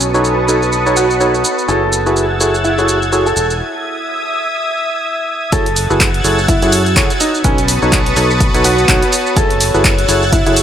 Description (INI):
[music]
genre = piano house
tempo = 125 BPM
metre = 4/4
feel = swing 58% on 16ths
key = F# dorian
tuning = A4 = 440 Hz
[part]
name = analog string pad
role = sustained chords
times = 0.0-10.6 s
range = B4 to A6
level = -18 LUFS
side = equal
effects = ensemble chorus, sidechain pumping
[part]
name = fingered electric bass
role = bass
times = 0.0-10.6 s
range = E1 to F#2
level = -19 LUFS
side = equal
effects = sidechain pumping, low-pass filter
[part]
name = punchy analog drum machine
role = drums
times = 0.0-10.6 s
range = handclaps, hi-hat, shaker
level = -18 LUFS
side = right 1 dB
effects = none
[part]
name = warbly tape-like pad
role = texture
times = 0.0-10.6 s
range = B3 to C#5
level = -23 LUFS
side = right 2 dB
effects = chorus, built-in reverb, sidechain pumping
[part]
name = percussive organ stab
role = riff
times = 0.1-10.6 s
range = D#4 to C#5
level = -17 LUFS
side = equal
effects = chorus, sidechain pumping, analog delay
[part]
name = clear baby grand piano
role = melody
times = 1.0-10.5 s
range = C#4 to A4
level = -20 LUFS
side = right 2 dB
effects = analog delay
[part]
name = electronic kick drum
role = drums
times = 5.5-10.4 s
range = none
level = -16 LUFS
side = equal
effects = none
[sound]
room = wet plate reverb, RT60 1.8 s, digital ambience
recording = dreamy mix soaked in reverb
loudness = -11 LUFS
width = side -9 dB against mid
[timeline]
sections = 0.0-5.5 A section; 5.5-10.6 B section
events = break 3.6-5.5; drop 5.5-10.6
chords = 0.0 B9; 1.7 F#m9; 3.4 Emaj7; 5.5 F#m9; 7.2 B9; 9.4 F#m9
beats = 0.24 0.72 1.21 | 1.69 2.17 2.65 3.12 | 3.60 4.08 4.57 5.04 | 5.53 6.00 6.49 6.96 | 7.45 7.92 8.40 8.88 | 9.37 9.85 10.32